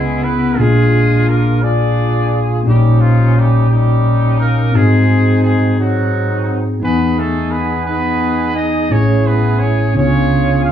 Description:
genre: gospel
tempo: 58 BPM (dotted quarters)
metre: 6/8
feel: straight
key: unclear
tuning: A4 = 440 Hz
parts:
  - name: clear horn section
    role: melody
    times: 0.0-10.7 s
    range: E#3 to E#5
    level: -17 LUFS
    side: right 1 dB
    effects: none
  - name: tine electric piano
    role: accompaniment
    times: 0.0-10.7 s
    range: A1 to G#5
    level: -13 LUFS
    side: left 1 dB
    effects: fast stereo tremolo
room: wet large studio reverb, RT60 1.1 s, small room ambience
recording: small room reverb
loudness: -11 LUFS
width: side -10 dB against mid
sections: 0.0-10.7 A section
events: none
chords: 0.0 C#m7; 0.6 A#7; 2.7 D#7/A#; 4.7 G#7; 6.8 Emaj7; 8.9 Amaj7; 9.9 C#7b9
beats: | 0.58 1.62 | 2.66 3.70 | 4.74 5.78 | 6.82 7.86 | 8.90 9.94

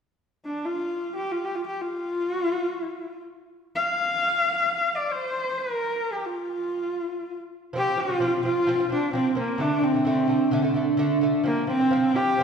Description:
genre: mongolian traditional, Mongolian folk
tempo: free time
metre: none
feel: none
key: F zhi mode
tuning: A4 = 440 Hz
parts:
  - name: clear horsehead fiddle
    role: melody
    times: 0.5-12.4 s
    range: Bb3 to F5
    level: -24 LUFS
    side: equal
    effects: none
  - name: lute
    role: arpeggios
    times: 7.7-12.4 s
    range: D3 to C4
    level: -24 LUFS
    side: right 2 dB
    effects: none
room: wet recital hall reverb, RT60 1.6 s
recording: heard from further back in the room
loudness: -23 LUFS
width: side -6 dB against mid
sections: 0.2-7.7 A section; 7.7-12.4 B section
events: none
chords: 0.2 N.C.; 7.7 F5; 9.6 D5; 11.5 F5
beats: free time

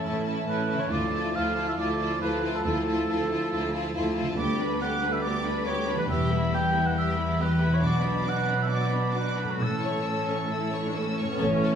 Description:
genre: cinematic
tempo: 138 BPM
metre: 4/4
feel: straight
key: unclear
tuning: A4 = 439 Hz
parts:
  - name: clear symphonic violin section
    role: melody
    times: 0.0-11.7 s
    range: G5 to E6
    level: -37 LUFS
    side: left 2 dB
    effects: none
  - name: rich symphonic violin section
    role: second line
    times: 0.0-11.7 s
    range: D4 to C#5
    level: -34 LUFS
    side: left 3 dB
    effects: none
  - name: warm oboe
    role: second line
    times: 0.0-11.0 s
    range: F#4 to G5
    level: -30 LUFS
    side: right 2 dB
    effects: none
  - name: warm studio viola section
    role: accompaniment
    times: 0.0-11.8 s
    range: G3 to E4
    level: -33 LUFS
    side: right 1 dB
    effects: none
  - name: mellow French horn section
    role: sustained chords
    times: 0.0-11.2 s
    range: E3 to F4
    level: -33 LUFS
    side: left 1 dB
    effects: none
  - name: concert harp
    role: arpeggios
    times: 0.0-11.8 s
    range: A2 to F5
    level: -34 LUFS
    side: left 6 dB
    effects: none
  - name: clear symphonic cello section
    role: bass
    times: 0.0-11.8 s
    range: D2 to B2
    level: -30 LUFS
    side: right 2 dB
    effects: none
  - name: rich symphonic double bass section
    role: bass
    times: 0.9-11.8 s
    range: E1 to D2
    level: -32 LUFS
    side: right 2 dB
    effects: none
  - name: warm trombone section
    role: sustained chords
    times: 11.4-11.8 s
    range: E3 to A3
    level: -27 LUFS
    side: right 4 dB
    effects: none
  - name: mellow trumpet section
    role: stabs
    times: 11.4-11.8 s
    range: C#5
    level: -28 LUFS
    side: left 4 dB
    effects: none
room: wet scoring stage reverb, RT60 1.6 s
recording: small room ambience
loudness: -24 LUFS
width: side -8 dB against mid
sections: 0.0-11.4 A section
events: none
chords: 0.0 A; 0.9 Dmadd9; 4.4 G/D; 6.1 Em; 7.8 Bm; 9.6 A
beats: 0.04 0.47 | 0.91 1.35 1.78 2.21 | 2.65 3.08 3.52 3.95 | 4.38 4.82 5.25 5.68 | 6.11 6.54 6.97 7.41 | 7.84 8.28 8.71 9.15 | 9.60 10.06 10.51 10.96 | 11.41

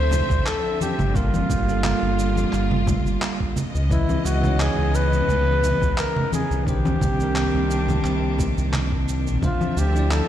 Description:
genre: sunset chillout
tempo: 87 BPM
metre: 4/4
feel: swing 53% on 16ths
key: unclear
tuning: A4 = 440 Hz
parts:
  - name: breathy flugelhorn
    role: melody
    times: 0.0-10.3 s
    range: E4 to C5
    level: -26 LUFS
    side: left 1 dB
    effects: ping-pong delay
  - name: bell-like tine electric piano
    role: accompaniment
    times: 0.0-10.3 s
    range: Eb3 to E5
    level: -27 LUFS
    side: moving between left 3 dB and right 5 dB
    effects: auto-pan, ping-pong delay
  - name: clear studio string section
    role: sustained chords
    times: 0.0-10.3 s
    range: C3 to A5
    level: -29 LUFS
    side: right 2 dB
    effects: none
  - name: round analog bass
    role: bass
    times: 0.0-10.2 s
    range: G1 to D2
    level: -23 LUFS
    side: equal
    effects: none
  - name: electronic congas, cabasa and handclaps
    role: drums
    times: 0.1-10.3 s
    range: none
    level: -29 LUFS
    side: right 2 dB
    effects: none
  - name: congas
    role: percussion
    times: 0.1-9.7 s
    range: none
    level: -29 LUFS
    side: left 3 dB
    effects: none
  - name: electronic kick drum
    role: drums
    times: 0.3-9.6 s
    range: none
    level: -25 LUFS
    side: equal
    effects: none
room: light reverb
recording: played on a big sound system in a bare room, large studio reverb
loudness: -19 LUFS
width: side -11 dB against mid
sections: 0.0-10.3 A section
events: none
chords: 0.0 Dm9; 1.2 Gm9; 3.6 C#m9; 6.7 Cm9; 9.4 Dm9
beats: 0.46 | 1.15 1.84 2.53 3.22 | 3.91 4.60 5.29 5.98 | 6.67 7.36 8.05 8.74 | 9.43 10.12

